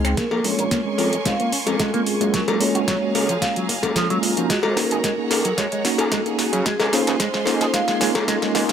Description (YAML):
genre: nu-disco, nu disco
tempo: 111 BPM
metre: 4/4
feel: straight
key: Bb minor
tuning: A4 = 441 Hz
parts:
  - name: vibraphone with medium mallets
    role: melody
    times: 0.0-8.0 s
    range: F4 to F5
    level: -27 LUFS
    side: equal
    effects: dub echo
  - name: mellow tine electric piano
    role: accompaniment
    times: 0.0-8.7 s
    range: Ab3 to Ab4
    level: -24 LUFS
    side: equal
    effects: medium stereo tremolo, sidechain pumping
  - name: clear symphonic string section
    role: sustained chords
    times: 0.0-8.7 s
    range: Db4 to F6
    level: -31 LUFS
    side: right 3 dB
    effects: sidechain pumping
  - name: electric guitar with an envelope filter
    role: riff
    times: 0.0-8.7 s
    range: F3 to Bb4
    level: -26 LUFS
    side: right 2 dB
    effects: lush chorus, low-pass filter
  - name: fat analog bass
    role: bass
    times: 0.0-8.7 s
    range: Gb1 to Db3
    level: -28 LUFS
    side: equal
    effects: high-pass filter
  - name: pop drum kit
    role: drums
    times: 0.0-8.7 s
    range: finger snaps, hi-hat, shaker, snare drum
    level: -25 LUFS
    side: equal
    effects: overdrive, high-pass filter on hats, high-pass filter on perc, high-pass filter on snare, high-pass filter on room
  - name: electronic kick drum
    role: drums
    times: 0.2-8.4 s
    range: none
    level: -28 LUFS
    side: equal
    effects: high-pass filter on kick, high-pass filter on room
  - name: cowbell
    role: percussion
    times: 0.3-8.3 s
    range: none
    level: -26 LUFS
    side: left 2 dB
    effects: none
room: light reverb, digital ambience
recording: none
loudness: -18 LUFS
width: side -8 dB against mid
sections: 0.2-8.7 A section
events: build-up 0.2-8.7; drum fill 0.2-8.7; filter sweep on clean electric guitar 0.2-8.7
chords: 0.2 Bbm9; 2.3 Gbmaj9; 4.5 Ab9sus4; 6.7 Dbmaj7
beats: | 0.17 0.72 1.26 1.80 | 2.34 2.88 3.42 3.96 | 4.50 5.04 5.58 6.12 | 6.66 7.20 7.74 8.28